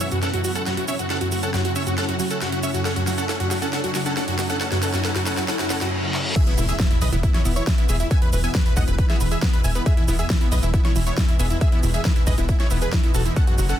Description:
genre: uplifting trance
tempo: 137 BPM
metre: 4/4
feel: straight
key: E major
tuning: A4 = 440 Hz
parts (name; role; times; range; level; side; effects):
- big supersaw lead; melody; 0.0-13.8 s; E4 to G#5; -27 LUFS; equal; sidechain pumping, low-pass filter, dub echo
- analog pluck; arpeggios; 0.0-13.8 s; E2 to C#4; -28 LUFS; right 2 dB; chorus, cassette tape, sidechain pumping, dub echo
- big-room dance drum kit; drums; 0.0-13.8 s; crash cymbal, handclaps, hi-hat, shaker, snare drum; -29 LUFS; right 1 dB; high-pass filter on hats, high-pass filter on snare, high-pass filter on perc, high-pass filter on cymbals, high-pass filter on room
- riser, reverse cymbal and impact; sound effects; 0.0-8.1 s; none; -31 LUFS; left 2 dB; none
- plucky unison lead; second line; 6.4-13.8 s; E4 to G#5; -33 LUFS; right 1 dB; sidechain pumping, dub echo
- electronic kick drum; drums; 6.4-13.5 s; none; -19 LUFS; equal; none
- tight sequencer bass; bass; 6.6-13.7 s; E1 to B1; -22 LUFS; equal; sidechain pumping
room: little or no reverb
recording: dense, heavily limited modern master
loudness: -19 LUFS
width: side -11 dB against mid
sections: 0.0-6.4 A section; 6.4-13.8 B section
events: build-up 0.0-6.4; drum fill 0.0-5.9, 6.1; riser 0.0-5.9; filter sweep on synth pluck 0.0-6.4; reverse cymbal 5.5-6.4; drop 6.4-13.8; impact 6.4-8.1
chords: 0.0 F#m7; 6.4 E

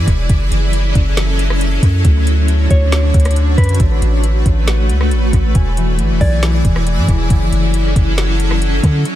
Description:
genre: hip hop, atmospheric cloud-rap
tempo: 137 BPM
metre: 4/4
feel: half-time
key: unclear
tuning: A4 = 440 Hz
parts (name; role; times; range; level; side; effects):
- shimmering ambient pad; sustained chords; 0.0-9.2 s; D3 to D5; -20 LUFS; equal; chorus, built-in reverb, tremolo, sidechain pumping
- long sustained 808-style bass; bass; 0.0-9.0 s; E1 to D3; -14 LUFS; equal; none
- smooth R&B drum kit; drums; 0.1-9.2 s; hi-hat, kick drum, rim click, snare drum; -15 LUFS; equal; none
- mellow electric guitar; melody; 2.7-6.4 s; B4 to D5; -26 LUFS; equal; dub echo
- concert harp; arpeggios; 3.8-9.2 s; E3 to C#6; -24 LUFS; left 4 dB; dub echo
room: digital ambience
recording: echo-heavy mix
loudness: -11 LUFS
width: side -13 dB against mid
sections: 0.0-9.2 A section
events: none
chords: 0.3 F#m7; 2.0 Dmaj7; 3.8 A69; 5.6 E7; 7.3 F#m7

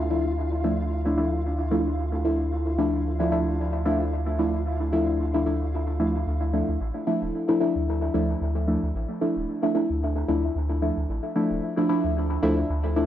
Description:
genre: dub techno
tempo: 112 BPM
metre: 4/4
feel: swing 56% on 16ths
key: D minor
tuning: A4 = 440 Hz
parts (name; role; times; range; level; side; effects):
- soft dub sub bass; bass; 0.0-13.1 s; D1 to D2; -27 LUFS; equal; none
- flickering grainy texture; texture; 0.0-6.3 s; F4; -35 LUFS; right 3 dB; built-in reverb
- deep mellow chord stab; stabs; 0.1-13.1 s; F3 to E4; -24 LUFS; equal; chorus, phaser, dub echo
room: light reverb, digital ambience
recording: dry, gritty hardware recording, transformer saturation, cassette tape, nothing above 7.5 kHz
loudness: -23 LUFS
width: side -11 dB against mid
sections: 0.0-6.3 A section; 6.3-13.1 B section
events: none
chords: 0.0 Dmadd9

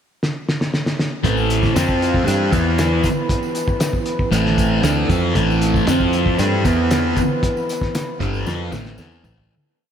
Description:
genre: psychedelic rock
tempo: 116 BPM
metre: 4/4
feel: straight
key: A minor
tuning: A4 = 440 Hz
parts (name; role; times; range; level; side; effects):
- cloth-damped thuddy drum kit; drums; 0.2-9.5 s; hi-hat, kick drum, snare drum, toms; -22 LUFS; equal; none
- mellow tonewheel organ; sustained chords; 1.2-9.5 s; E3 to C5; -24 LUFS; right 2 dB; slow rotary speaker
- thick fuzz guitar; riff; 1.2-9.5 s; G2 to G4; -19 LUFS; left 1 dB; distortion, phaser
- fingered electric bass; bass; 1.2-9.5 s; G1 to G2; -22 LUFS; equal; none
- tambourine; percussion; 1.4-9.4 s; none; -39 LUFS; left 7 dB; none
room: moderate huge ambient reverb, RT60 7.5 s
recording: dreamy mix soaked in reverb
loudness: -16 LUFS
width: side -8 dB against mid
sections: 0.0-1.2 pickup bar; 1.2-9.5 riff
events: drum fill 0.2-1.2, 8.5-9.5; fade-out 7.4-9.5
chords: 0.0 N.C.; 1.2 Am; 1.8 F5; 2.3 Am; 2.5 E5; 4.3 Am; 5.9 F5; 6.4 Am; 6.6 E5; 8.2 Am

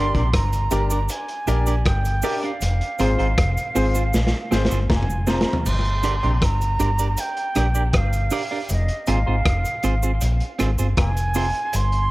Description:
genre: roots reggae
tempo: 79 BPM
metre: 4/4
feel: straight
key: F dorian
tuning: A4 = 440 Hz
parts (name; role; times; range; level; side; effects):
- concert flute; melody; 0.0-12.1 s; Eb5 to C6; -27 LUFS; right 2 dB; dub echo
- clean electric guitar; accompaniment; 0.0-11.5 s; C4 to D5; -29 LUFS; right 4 dB; dub echo
- mellow clav; arpeggios; 0.0-11.5 s; Ab2 to D3; -34 LUFS; left 5 dB; none
- clear concert grand piano; stabs; 0.0-5.5 s; C4 to D5; -28 LUFS; left 2 dB; none
- vintage muted fingered electric bass; bass; 0.0-12.1 s; F1 to Bb1; -21 LUFS; equal; none
- crunchy breakbeat drum kit; drums; 0.1-12.1 s; crash cymbal, hi-hat, kick drum, rim click, snare drum, toms; -25 LUFS; equal; analog delay
- cabasa; percussion; 0.5-11.9 s; none; -34 LUFS; right 4 dB; none
room: light reverb, small room reverb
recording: echo-heavy mix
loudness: -19 LUFS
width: side -19 dB against mid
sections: 0.0-5.7 A section; 5.7-12.1 A section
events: drum fill 4.1-5.7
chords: 0.0 Gm; 2.6 Fm; 5.7 Gm; 8.7 Fm

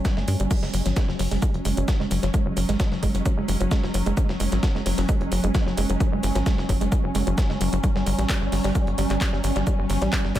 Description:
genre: driving peak-time techno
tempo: 131 BPM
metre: 4/4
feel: straight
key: unclear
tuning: A4 = 437 Hz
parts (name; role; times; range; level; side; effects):
- woody wave-folded pluck; riff; 0.0-10.4 s; F#3 to A3; -28 LUFS; equal; chorus, tube saturation, sidechain pumping, tape echo
- swarming drone; drone; 0.0-10.4 s; F#3 to C#4; -30 LUFS; right 1 dB; built-in reverb, sidechain pumping
- breakbeat sampler-style drum kit; drums; 0.0-10.4 s; hi-hat, shaker, snare drum; -37 LUFS; equal; overdrive, sidechain pumping on perc, high-pass filter on perc, small room ambience, high-pass filter on snare, sidechain pumping on hats, high-pass filter on hats, high-pass filter on room, dub echo
- electronic kick drum; drums; 0.0-10.4 s; none; -23 LUFS; equal; small room ambience
- techno drum kit; drums; 0.1-10.4 s; crash cymbal, handclaps, hi-hat; -33 LUFS; right 2 dB; small room ambience, dub echo
- tight sequencer bass; bass; 0.2-10.4 s; F#1 to G2; -25 LUFS; equal; sidechain pumping
room: light reverb, digital ambience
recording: echo-heavy mix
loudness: -21 LUFS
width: side -12 dB against mid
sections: 0.0-10.4 A section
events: filter sweep on synth arpeggio sound 0.0-10.4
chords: 0.0 F#5; 7.8 Em69/G (rootless)

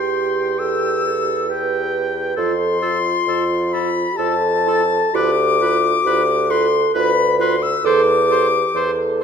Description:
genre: classical, slow romantic movement for wind quintet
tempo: 66 BPM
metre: 3/4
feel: rubato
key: unclear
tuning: A4 = 440 Hz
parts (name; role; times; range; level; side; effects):
- concert flute; melody; 0.0-9.2 s; A5 to E6; -20 LUFS; left 8 dB; none
- clear oboe; second line; 0.0-9.2 s; A4 to G5; -26 LUFS; equal; none
- dark French horn; accompaniment; 0.0-9.2 s; F4 to B4; -22 LUFS; right 2 dB; none
- warm clarinet; accompaniment; 0.0-9.2 s; F4 to B4; -25 LUFS; right 10 dB; none
- mellow bassoon; bass; 0.0-9.2 s; D2 to F2; -21 LUFS; right 2 dB; none
room: wet recital hall reverb, RT60 1.7 s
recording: minimal, uncompressed stereo recording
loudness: -15 LUFS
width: side -7 dB against mid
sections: 0.0-9.2 A section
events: none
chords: 0.0 C/E; 2.4 F; 5.1 Bdim/D; 7.8 Am/E

